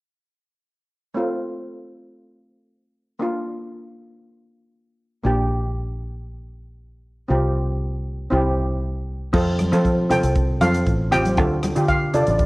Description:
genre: calypso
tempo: 117 BPM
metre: 4/4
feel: straight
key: F major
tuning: A4 = 440 Hz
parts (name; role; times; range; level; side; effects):
- steel pan; accompaniment; 1.1-12.5 s; A3 to A4; -24 LUFS; equal; cassette tape
- fingered electric bass; bass; 5.2-12.5 s; A1 to F3; -22 LUFS; equal; none
- swinging big-band drum kit; drums; 9.3-12.5 s; crash cymbal, hi-hat, kick drum, rim click; -26 LUFS; equal; cassette tape
- congas; percussion; 9.6-12.3 s; none; -26 LUFS; equal; none
- steel pan; melody; 10.1-12.4 s; D5 to G5; -22 LUFS; equal; cassette tape
room: light reverb, small room reverb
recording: home recording on cassette, lossy compression artefacts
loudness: -19 LUFS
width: side -22 dB against mid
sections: 1.2-9.3 A section; 9.3-12.5 B section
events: none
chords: 1.2 F; 3.2 Bb; 5.3 Gm/Bb; 7.3 Csus4; 8.3 C; 9.3 F; 11.4 Dm

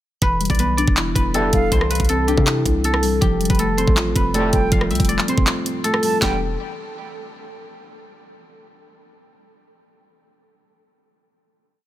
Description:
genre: hip hop, trap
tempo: 160 BPM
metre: 4/4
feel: half-time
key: E phrygian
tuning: A4 = 440 Hz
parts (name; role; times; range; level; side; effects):
- guzheng; melody; 0.2-6.4 s; G4 to F5; -23 LUFS; left 1 dB; low-pass filter, ping-pong delay
- muted felt-like synth keys; accompaniment; 0.2-6.4 s; E3 to F4; -23 LUFS; left 1 dB; chorus, low-pass filter
- hard-hitting 808-style bass; bass; 0.2-6.6 s; E1 to C3; -23 LUFS; equal; none
- trap drum kit; drums; 0.2-6.3 s; handclaps, hi-hat, kick drum, rim click, snare drum; -20 LUFS; equal; none
- warm brass ensemble; stabs; 1.3-1.6, 4.3-6.3 s; E2 to G3; -31 LUFS; left 1 dB; ping-pong delay
- silver concert flute; second line; 1.5-1.7, 4.5-6.4 s; F5 to A5; -31 LUFS; right 6 dB; ping-pong delay
room: studio reverb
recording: none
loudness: -16 LUFS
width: side -14 dB against mid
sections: 0.2-6.2 hook; 6.2-7.7 final chord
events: kick muted 5.5-6.2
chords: 0.2 Em7; 1.7 Cadd9; 3.2 Fadd9; 6.2 Em7

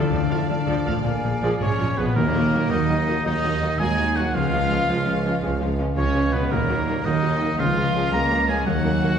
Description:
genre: cinematic, heroic adventure film score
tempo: 110 BPM (dotted quarters)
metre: 12/8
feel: straight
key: Eb minor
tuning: A4 = 441 Hz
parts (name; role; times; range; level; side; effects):
- rich symphonic violin section; melody; 0.0-9.2 s; Bb4 to Bb5; -35 LUFS; left 3 dB; none
- bright clarinet; second line; 0.0-2.0 s; D5; -35 LUFS; left 2 dB; none
- clear oboe; second line; 0.0-9.2 s; Bb4 to Bb5; -27 LUFS; equal; none
- large flute ensemble; second line; 0.0-2.0 s; Ab5 to A5; -33 LUFS; right 1 dB; none
- warm symphonic violin section; second line; 0.0-9.1 s; Bb3 to E5; -34 LUFS; left 2 dB; none
- rich chamber viola section; accompaniment; 0.0-9.1 s; Eb3 to A4; -30 LUFS; right 1 dB; none
- mellow French horn section; sustained chords; 0.0-1.6 s; A3 to E4; -32 LUFS; left 3 dB; none
- concert harp; arpeggios; 0.0-9.2 s; Bb2 to Db6; -29 LUFS; left 6 dB; none
- timpani; percussion; 0.0-2.7 s; D3 to Eb3; -28 LUFS; equal; none
- rich symphonic cello section; bass; 0.1-9.2 s; F2 to Bb3; -28 LUFS; right 2 dB; none
- rich symphonic double bass section; bass; 0.1-9.1 s; Bb1 to Eb2; -27 LUFS; right 2 dB; none
- dark trombone section; sustained chords; 0.3-2.0 s; F3 to A3; -34 LUFS; right 1 dB; none
- bright trumpet; stabs; 0.3-9.2 s; Bb3 to F5; -30 LUFS; equal; none
- clear tuba; bass; 2.2-9.1 s; Db2 to Eb2; -28 LUFS; right 3 dB; none
room: wet scoring stage reverb, RT60 1.8 s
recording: heard from further back in the room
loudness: -19 LUFS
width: side -7 dB against mid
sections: 0.0-2.2 A section; 2.2-9.2 B section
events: none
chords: 0.0 Dm; 1.0 Bb7; 2.2 Ebm; 4.3 Db; 6.5 Ebm; 7.6 Db; 8.7 Ebm

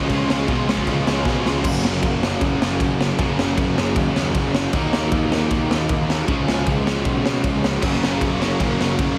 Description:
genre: punk rock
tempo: 155 BPM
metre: 4/4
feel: straight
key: F# major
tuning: A4 = 440 Hz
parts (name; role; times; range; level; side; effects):
- distorted electric guitar; riff; 0.0-9.2 s; F#2 to E#4; -27 LUFS; equal; distortion
- distorted electric guitar; riff; 0.0-9.2 s; F#2 to D#4; -28 LUFS; equal; distortion
- heavy high-gain guitar; riff; 0.0-1.6, 7.8-9.2 s; F#2 to E#4; -30 LUFS; equal; distortion
- fuzz picked electric bass; bass; 0.0-9.2 s; F#1 to B2; -27 LUFS; equal; overdrive
- raw garage drum kit; drums; 0.0-9.1 s; crash cymbal, kick drum, ride cymbal, snare drum; -24 LUFS; equal; none
room: light reverb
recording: heavily compressed radio sound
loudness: -20 LUFS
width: mono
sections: 0.0-1.6 A section; 1.6-9.2 B section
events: drum fill 1.3-1.6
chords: 0.0 C#; 1.6 F#; 4.7 D#m; 6.3 C#; 7.8 F#

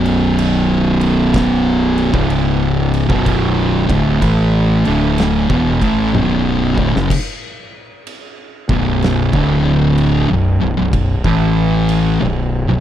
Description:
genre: stoner and doom metal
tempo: 63 BPM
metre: 4/4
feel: swing 66% on 8ths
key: B dorian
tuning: A4 = 437 Hz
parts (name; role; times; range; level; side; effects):
- fuzz guitar; riff; 0.0-12.8 s; B1 to A3; -18 LUFS; right 9 dB; distortion
- thick fuzz guitar; riff; 0.0-12.8 s; B1 to A3; -16 LUFS; left 5 dB; distortion
- fuzz fingered electric bass; bass; 0.0-12.8 s; B0 to A1; -19 LUFS; equal; overdrive
- oversized low-tuned drum kit; drums; 0.1-12.2 s; crash cymbal, kick drum, snare drum, toms; -23 LUFS; equal; none
room: little or no reverb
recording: dry, close 1970s-style studio recording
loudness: -12 LUFS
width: side -11 dB against mid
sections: 0.0-7.1 A section; 7.1-12.8 B section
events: drum fill 6.1-7.1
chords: 0.0 B5; 2.1 C#5; 3.0 Bm; 7.1 B5; 9.3 D5; 10.2 B5; 11.2 A5; 12.1 B5

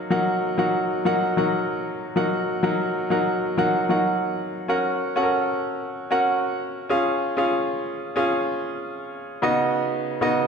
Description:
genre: pop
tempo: 95 BPM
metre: 4/4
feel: straight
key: unclear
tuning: A4 = 438 Hz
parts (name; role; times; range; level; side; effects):
- clear concert grand piano; solo; 0.0-10.5 s; Db3 to Gb5; -21 LUFS; equal; none
room: wet recital hall reverb, RT60 1.8 s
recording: none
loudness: -21 LUFS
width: side -6 dB against mid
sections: 0.0-4.7 A section; 4.7-10.5 B section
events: none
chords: 0.0 Ebm/Gb; 4.7 Gb/Db; 6.9 Db; 9.4 Cb/Db

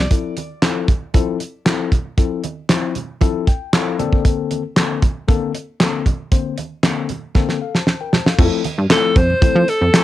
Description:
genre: early-eighties boogie funk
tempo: 116 BPM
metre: 4/4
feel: straight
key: unclear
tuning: A4 = 441 Hz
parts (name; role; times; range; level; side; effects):
- breathy alto saxophone; melody; 0.0-0.1, 8.9-10.0 s; A4 to D5; -18 LUFS; equal; cassette tape
- plucky analog bass; bass; 0.0-0.1, 8.4-9.9 s; F2 to F3; -17 LUFS; right 1 dB; none
- tine electric piano; accompaniment; 0.1-10.0 s; D3 to A5; -22 LUFS; left 9 dB; cassette tape
- damped 70s drum kit; drums; 0.1-10.0 s; crash cymbal, handclaps, hi-hat, kick drum, snare drum; -15 LUFS; right 1 dB; cassette tape
- congas; percussion; 0.1-10.0 s; none; -30 LUFS; right 8 dB; none
room: light reverb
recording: home recording on cassette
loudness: -15 LUFS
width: side -14 dB against mid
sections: 0.1-8.4 A section; 8.4-10.0 B section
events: tine electric piano fill 3.2-4.2; drum fill 7.4-8.4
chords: 0.1 Fmaj7; 4.0 Bbmaj9; 8.4 Fmaj7

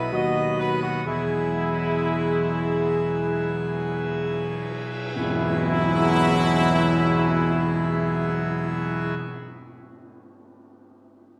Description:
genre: classical, ceremonial fanfare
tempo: free time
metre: none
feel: none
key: E major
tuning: A4 = 440 Hz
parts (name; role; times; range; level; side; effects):
- warm trumpet section; melody; 0.0-9.1 s; E4 to D#5; -30 LUFS; equal; none
- clear French horn section; sustained chords; 0.0-9.1 s; G#3 to G#4; -31 LUFS; equal; none
- pipe organ, full organ; sustained chords; 0.0-9.1 s; B2 to D#5; -31 LUFS; equal; none
- warm trombone section; sustained chords; 0.0-9.1 s; B2 to G#3; -33 LUFS; equal; none
- dark tuba; bass; 0.0-9.1 s; B1 to E2; -28 LUFS; equal; none
- cymbal swell and tam-tam; percussion; 1.1-9.1 s; none; -38 LUFS; equal; none
room: wet concert hall reverb, RT60 1.9 s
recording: none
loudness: -23 LUFS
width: mono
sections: 0.0-5.1 A section; 5.1-9.4 B section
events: slowing down 0.0-5.1; band accent 5.1-6.2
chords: 0.0 B; 1.1 Eadd9

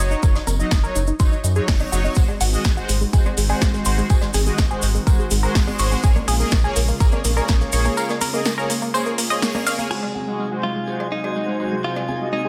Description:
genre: progressive house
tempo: 124 BPM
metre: 4/4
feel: straight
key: Ab mixolydian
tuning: A4 = 439 Hz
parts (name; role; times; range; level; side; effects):
- tight sequenced synth; arpeggios; 0.0-12.5 s; Ab3 to F5; -29 LUFS; equal; chorus, phaser, sidechain pumping, dub echo
- soft supersaw; stabs; 0.0-12.5 s; Gb3 to Eb5; -29 LUFS; equal; sidechain pumping, low-pass filter, dub echo
- round analog bass; bass; 0.0-7.9 s; Gb1 to Gb2; -24 LUFS; equal; sidechain pumping
- cabasa; percussion; 0.1-9.9 s; none; -33 LUFS; equal; none
- crisp fusion drum kit; drums; 0.2-12.4 s; hi-hat, snare drum, tambourine; -37 LUFS; equal; high-pass filter on hats, low-pass filter on hats, high-pass filter on snare, low-pass filter on snare, high-pass filter on perc, low-pass filter on perc, high-pass filter on room, low-pass filter on room
- electronic kick drum; drums; 0.2-7.6 s; none; -20 LUFS; equal; none
- cowbell and congas; percussion; 0.4-12.2 s; none; -36 LUFS; equal; sidechain pumping on perc
- deep house drum kit; drums; 0.7-10.0 s; crash cymbal, hi-hat, snare drum; -28 LUFS; equal; overdrive, sidechain pumping on hats, sidechain pumping on cymbals
- lush unison pad; sustained chords; 2.2-12.5 s; C3 to Gb4; -33 LUFS; equal; chorus, sidechain pumping
- direct-recorded clean electric guitar; melody; 9.9-12.5 s; Eb4 to Ab4; -29 LUFS; equal; sidechain pumping, tape echo
- twinkling granular texture; texture; 10.4-12.5 s; Ab5; -39 LUFS; equal; built-in reverb, sidechain pumping
room: light reverb, small room ambience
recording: none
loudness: -20 LUFS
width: mono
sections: 0.0-9.9 A section; 9.9-12.5 B section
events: filter sweep on synth arpeggio sound 0.0-9.9, 9.9-12.5; break 8.0-9.9; filter sweep on supersaw synth 9.9-12.5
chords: 0.0 Ebm7/Gb; 2.2 Ab7; 6.0 Bbm7; 9.9 Ab7

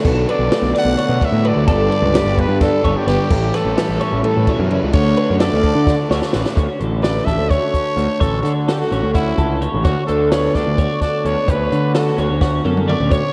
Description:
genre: math rock and midwest emo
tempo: 257 BPM (eighths)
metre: 7/8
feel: straight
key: D major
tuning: A4 = 441 Hz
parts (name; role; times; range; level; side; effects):
- twelve-string electric guitar; accompaniment; 0.0-13.3 s; D2 to F#4; -26 LUFS; equal; lush chorus
- twelve-string electric guitar; arpeggios; 0.0-13.3 s; F#4 to D5; -25 LUFS; equal; analog chorus, analog delay
- biting overdriven guitar; riff; 0.0-6.6 s; G2 to F#4; -27 LUFS; equal; none
- fuzz picked electric bass; bass; 0.0-13.2 s; G1 to D3; -22 LUFS; equal; overdrive
- compact cocktail drum kit; drums; 0.0-13.2 s; crash cymbal, hi-hat, kick drum, ride cymbal, snare drum, toms; -23 LUFS; equal; none
- growling trumpet; melody; 0.3-13.3 s; E4 to F#5; -24 LUFS; equal; analog delay
room: wet lush hall reverb, RT60 1.8 s, small room ambience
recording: dreamy mix soaked in reverb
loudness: -17 LUFS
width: mono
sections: 0.0-6.6 A section; 6.6-13.3 B section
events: drum fill 5.9-6.6, 12.4-13.1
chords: 0.0 Bm7; 1.7 G; 3.3 A7; 4.9 Dmaj7; 9.8 Bm9/D

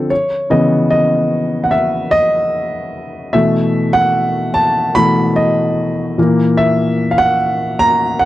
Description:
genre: soul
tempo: 74 BPM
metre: 4/4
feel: straight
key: unclear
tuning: A4 = 440 Hz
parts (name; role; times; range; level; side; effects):
- warm grand piano; solo; 0.0-8.3 s; A#2 to B5; -12 LUFS; equal; none
room: light reverb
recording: dry, close 1970s-style studio recording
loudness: -12 LUFS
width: side -14 dB against mid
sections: 0.0-8.3 A section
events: grand piano solo 0.0-8.3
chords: 0.1 C#m9; 3.3 B7sus4; 6.2 F#7/A#

